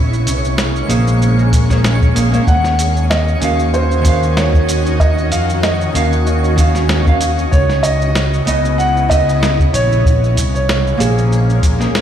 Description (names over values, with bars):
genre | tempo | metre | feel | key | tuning
sunset chillout | 95 BPM | 4/4 | swing 55% on 16ths | unclear | A4 = 440 Hz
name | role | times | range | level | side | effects
shimmering ambient pad | sustained chords | 0.0-12.0 s | C#3 to D#5 | -22 LUFS | equal | chorus, built-in reverb, phaser
fingered electric bass | bass | 0.0-11.8 s | A#1 to E#2 | -15 LUFS | equal | none
twinkling granular texture | texture | 0.0-12.0 s | C#4 to C#7 | -27 LUFS | equal | built-in reverb
dusty soul sampler-style drum kit | drums | 0.1-12.0 s | cabasa, hi-hat, snare drum | -22 LUFS | right 1 dB | none
nylon-string guitar | accompaniment | 0.9-11.9 s | C#3 to E#5 | -20 LUFS | right 2 dB | auto-pan, digital delay
electronic kick drum | drums | 1.5-11.8 s | none | -13 LUFS | equal | overdrive
dark concert grand piano | melody | 2.5-11.6 s | G#4 to F#5 | -19 LUFS | equal | ping-pong delay
room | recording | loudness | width
light reverb, digital ambience | played on a big sound system in a bare room, large studio reverb | -11 LUFS | side -9 dB against mid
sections
0.0-12.0 A section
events
none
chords
0.0 A#m9; 2.5 D#m9; 7.5 C#m9; 9.7 A#m9